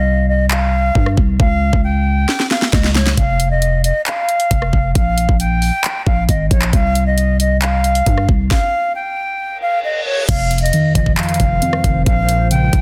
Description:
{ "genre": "hip hop, trap", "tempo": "135 BPM", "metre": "4/4", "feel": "half-time", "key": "F minor", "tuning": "A4 = 436 Hz", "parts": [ { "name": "reedy silver concert flute", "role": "melody", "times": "0.0-12.8 s", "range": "Db5 to G5", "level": "-21 LUFS", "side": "equal", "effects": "none" }, { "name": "growling 808-style bass", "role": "bass", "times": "0.0-12.8 s", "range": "F1 to G2", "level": "-18 LUFS", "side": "equal", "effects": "none" }, { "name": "trap drum kit", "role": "drums", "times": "0.5-12.8 s", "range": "crash cymbal, handclaps, hi-hat, kick drum, rim click, snare drum", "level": "-19 LUFS", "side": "equal", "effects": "none" }, { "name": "reverse cymbal", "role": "sound effects", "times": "9.6-10.3 s", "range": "none", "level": "-27 LUFS", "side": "equal", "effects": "none" }, { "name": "muted felt-like synth keys", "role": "accompaniment", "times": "10.3-12.8 s", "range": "F2 to C4", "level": "-21 LUFS", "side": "equal", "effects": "chorus" }, { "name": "granular cloud pad", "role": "sustained chords", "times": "10.9-12.8 s", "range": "Db3 to C5", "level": "-33 LUFS", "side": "equal", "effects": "built-in reverb" } ], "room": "light reverb, digital ambience", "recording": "dense, heavily limited modern master, faint mains hum", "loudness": "-16 LUFS", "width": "mono", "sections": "0.0-10.3 A section; 10.3-12.8 B section", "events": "break 0.0-3.2; drum fill 2.3-3.2; stop 8.5-10.3; reverse cymbal 9.6-10.3", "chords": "0.0 C5; 1.4 Db; 3.2 Ebsus2/F; 5.0 Bb5; 6.7 C5; 8.5 N.C.; 10.3 Fm7; 12.1 Bbmadd9", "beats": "0.06 0.51 0.95 | 1.40 1.84 2.29 2.73 | 3.17 3.62 4.06 4.51 | 4.95 5.40 5.84 6.29 | 6.73 7.17 7.62 8.06 | 8.51 8.95 9.40 9.84 | 10.29 10.73 11.18 11.62 | 12.06 12.51" }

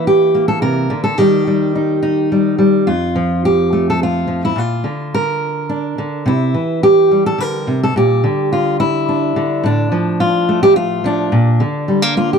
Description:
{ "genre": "folk, solo fingerstyle acoustic guitar", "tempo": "106 BPM", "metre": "3/4", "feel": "straight", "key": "unclear", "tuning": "A4 = 440 Hz", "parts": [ { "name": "fingerpicked steel-string acoustic guitar", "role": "solo", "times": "0.0-12.4 s", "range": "F2 to Bb4", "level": "-13 LUFS", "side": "equal", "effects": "none" } ], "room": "little or no reverb", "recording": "dry, close 1970s-style studio recording", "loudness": "-13 LUFS", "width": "side -6 dB against mid", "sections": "0.0-12.4 A section", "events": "none", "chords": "0.0 C7; 1.2 Eb; 2.9 F; 4.6 Bb; 6.3 C; 8.0 Bb6; 9.6 F6/A; 11.3 Bb", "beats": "0.06 0.62 | 1.19 1.75 2.31 | 2.88 3.44 4.00 | 4.56 5.13 5.69 | 6.26 6.83 7.39 | 7.96 8.52 9.09 | 9.65 10.21 10.77 | 11.34 11.90" }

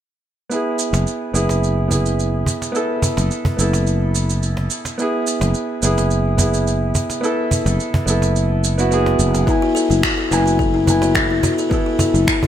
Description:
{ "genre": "organic downtempo", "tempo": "107 BPM", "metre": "4/4", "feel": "swing 53% on 16ths", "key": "unclear", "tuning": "A4 = 435 Hz", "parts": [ { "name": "felt-muted upright piano", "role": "accompaniment", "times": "0.5-12.5 s", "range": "B3 to G#5", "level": "-20 LUFS", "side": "right 1 dB", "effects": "sidechain pumping, low-pass filter, ping-pong delay, shimmer reverb" }, { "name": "electronic shaker and finger snaps", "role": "drums", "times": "0.5-12.4 s", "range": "none", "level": "-24 LUFS", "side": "right 2 dB", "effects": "gated reverb" }, { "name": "sustaining fretless electric bass", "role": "bass", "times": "0.9-12.3 s", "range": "F#1", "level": "-18 LUFS", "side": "equal", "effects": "sidechain pumping" }, { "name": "cajon", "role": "percussion", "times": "0.9-12.5 s", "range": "none", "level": "-22 LUFS", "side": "right 1 dB", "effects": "none" }, { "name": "buzzing kalimba", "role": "arpeggios", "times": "9.5-12.5 s", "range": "E4 to A4", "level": "-18 LUFS", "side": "left 4 dB", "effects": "ping-pong delay, shimmer reverb" }, { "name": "electronic kick drum", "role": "drums", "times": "9.5-12.4 s", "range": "none", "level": "-22 LUFS", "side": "equal", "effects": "none" } ], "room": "moderate plate reverb, RT60 1.2 s", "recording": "bright 1980s-style digital production", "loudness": "-16 LUFS", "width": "side -10 dB against mid", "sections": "0.5-9.5 A section; 9.5-12.5 B section", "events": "filter sweep on felt piano 0.5-9.5", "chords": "0.5 Asus2/F#", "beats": "| 0.50 1.06 1.62 2.19 | 2.75 3.31 3.87 4.43 | 4.99 5.55 6.11 6.67 | 7.23 7.79 8.35 8.91 | 9.47 10.04 10.60 11.16 | 11.72 12.28" }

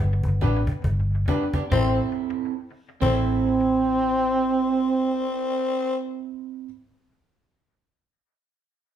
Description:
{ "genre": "roots reggae", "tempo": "69 BPM", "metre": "4/4", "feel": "swing 59% on 16ths", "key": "A minor", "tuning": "A4 = 439 Hz", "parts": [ { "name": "clear trombone", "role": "melody", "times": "0.0-6.0 s", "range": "B3 to C4", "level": "-25 LUFS", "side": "equal", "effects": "none" }, { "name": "vintage muted fingered electric bass", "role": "bass", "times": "0.0-6.7 s", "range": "G1 to A1", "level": "-24 LUFS", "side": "equal", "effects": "none" }, { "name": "cajon", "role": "drums", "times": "0.2-3.3 s", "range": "none", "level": "-27 LUFS", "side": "equal", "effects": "dub echo" }, { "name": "electric guitar through a small old amp", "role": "accompaniment", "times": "0.4-6.7 s", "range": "B3 to A4", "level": "-27 LUFS", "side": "right 12 dB", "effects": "none" }, { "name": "dark grand piano", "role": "stabs", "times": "0.4-6.7 s", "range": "D4 to C5", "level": "-32 LUFS", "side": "left 3 dB", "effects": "none" }, { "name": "growling tenor saxophone", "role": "second line", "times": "1.7-6.0 s", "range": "C4", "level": "-28 LUFS", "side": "left 5 dB", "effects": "none" } ], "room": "moderate large studio reverb, RT60 0.9 s", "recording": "band playing live in one room", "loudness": "-21 LUFS", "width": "side -10 dB against mid", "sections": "0.0-1.7 A section; 1.7-5.2 B section", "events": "drum fill 0.0-1.7", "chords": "0.0 G; 1.7 Am", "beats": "0.85 | 1.72 2.58 3.45 4.32" }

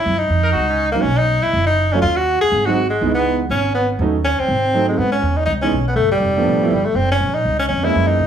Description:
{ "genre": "jazz, small-group swing and bop", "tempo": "243 BPM", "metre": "4/4", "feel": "swing 60% on 8ths", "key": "C# minor", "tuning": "A4 = 440 Hz", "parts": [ { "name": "bright tenor saxophone", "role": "melody", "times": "0.0-8.3 s", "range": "G3 to G#4", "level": "-17 LUFS", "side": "left 1 dB", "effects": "plate reverb" }, { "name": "upright bass", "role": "bass", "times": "0.1-8.3 s", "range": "F1 to A#2", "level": "-20 LUFS", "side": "right 1 dB", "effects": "none" }, { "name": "clear trumpet", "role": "second line", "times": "0.4-0.8 s", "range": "C#4 to A#4", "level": "-23 LUFS", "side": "right 2 dB", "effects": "none" }, { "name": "bright grand piano", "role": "accompaniment", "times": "0.9-8.2 s", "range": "E3 to E#4", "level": "-20 LUFS", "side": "right 4 dB", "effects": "none" } ], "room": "moderate club reverb, RT60 0.9 s", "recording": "small room ambience", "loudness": "-15 LUFS", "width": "side -8 dB against mid", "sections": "0.0-5.0 A section; 5.0-8.3 A section", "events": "none", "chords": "0.1 F#5; 1.0 B; 2.0 D#madd9; 2.5 G#7; 3.0 C#m7; 4.0 D#m7b5; 4.5 G#7b9; 5.0 C#m7; 6.0 G9; 7.0 F#maj7", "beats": "| 0.05 0.30 0.54 0.79 | 1.04 1.28 1.53 1.77 | 2.02 2.27 2.52 2.76 | 3.01 3.25 3.50 3.75 | 3.99 4.24 4.49 4.73 | 4.98 5.23 5.47 5.72 | 5.97 6.21 6.46 6.71 | 6.95 7.20 7.45 7.70 | 7.94 8.19" }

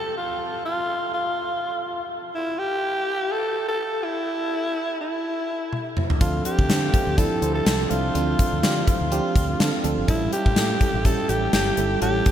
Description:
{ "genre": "1980s-style pop", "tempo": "124 BPM", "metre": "4/4", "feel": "swing 55% on 16ths", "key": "D minor", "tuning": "A4 = 440 Hz", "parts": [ { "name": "breathy alto saxophone", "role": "melody", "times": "0.0-12.3 s", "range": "E4 to A4", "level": "-24 LUFS", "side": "equal", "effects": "ping-pong delay" }, { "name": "gated 80s drum kit", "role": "drums", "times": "5.7-12.3 s", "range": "hi-hat, kick drum, snare drum, toms", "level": "-23 LUFS", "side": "equal", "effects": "none" }, { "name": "FM electric piano", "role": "accompaniment", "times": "6.2-12.3 s", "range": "F3 to C5", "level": "-28 LUFS", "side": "right 3 dB", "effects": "chorus" }, { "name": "mellow fretless electric bass", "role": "bass", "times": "6.2-12.2 s", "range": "G1 to D3", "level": "-26 LUFS", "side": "equal", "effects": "none" } ], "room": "moderate huge ambient reverb, RT60 8.9 s", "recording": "dreamy mix soaked in reverb", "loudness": "-21 LUFS", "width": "side -10 dB against mid", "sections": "0.0-12.3 A section", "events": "drum fill 5.7-6.2", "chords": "0.0 N.C.; 6.2 Dm7; 10.1 A7", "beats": "| 0.41 0.89 1.37 1.86 | 2.34 2.82 3.31 3.79 | 4.28 4.76 5.24 5.73 | 6.21 6.70 7.18 7.66 | 8.15 8.63 9.12 9.60 | 10.08 10.57 11.05 11.53 | 12.02" }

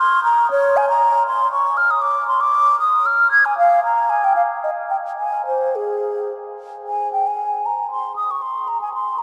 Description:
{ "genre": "classical, baroque-style fantasia for unaccompanied flute", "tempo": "106-121 BPM", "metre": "3/4", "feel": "rubato", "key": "Ab major", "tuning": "A4 = 439 Hz", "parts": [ { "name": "mellow hollow concert flute", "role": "solo", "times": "0.0-9.2 s", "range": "Ab4 to Ab6", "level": "-18 LUFS", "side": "equal", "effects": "none" } ], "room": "wet cathedral reverb, RT60 6.8 s", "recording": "in a vast, echoing space", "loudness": "-18 LUFS", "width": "mono", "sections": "0.0-6.9 A section; 6.9-9.2 A section", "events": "none", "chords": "none", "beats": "0.00 | 0.52 1.03 1.53 | 2.03 2.55 3.07 | 3.59 4.11 4.64 | 5.19 5.75 6.31 | 6.87 7.39 7.91 | 8.43 8.94" }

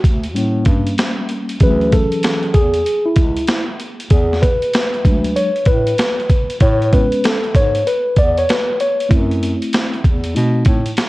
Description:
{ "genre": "hip hop, jazz-hop", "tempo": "96 BPM", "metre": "4/4", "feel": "swing 64% on 16ths", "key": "unclear", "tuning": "A4 = 441 Hz", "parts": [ { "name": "mellow bass clarinet", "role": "bass", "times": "0.0-10.9 s", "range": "C#2 to B2", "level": "-20 LUFS", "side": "equal", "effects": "none" }, { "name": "boom bap sampler-style drum kit", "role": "drums", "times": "0.0-11.1 s", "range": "hi-hat, kick drum, snare drum", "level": "-16 LUFS", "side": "equal", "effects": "none" }, { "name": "mellow tine electric piano", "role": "accompaniment", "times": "0.3-10.8 s", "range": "E3 to D5", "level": "-17 LUFS", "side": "equal", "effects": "medium stereo tremolo" } ], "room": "light reverb", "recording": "worn, warbling old tape, cassette tape, warbly pitch drift", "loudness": "-13 LUFS", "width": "side -19 dB against mid", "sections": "0.0-11.1 A section", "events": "tine electric piano solo 0.0-11.1", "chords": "0.4 A7b9; 1.6 Dmaj9#11; 4.1 E9; 6.6 Amaj9; 9.1 F#m7b5; 10.4 B7b9", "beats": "0.35 0.98 | 1.60 2.23 2.85 3.48 | 4.10 4.73 5.35 5.98 | 6.60 7.23 7.85 8.48 | 9.10 9.73 10.35 10.98" }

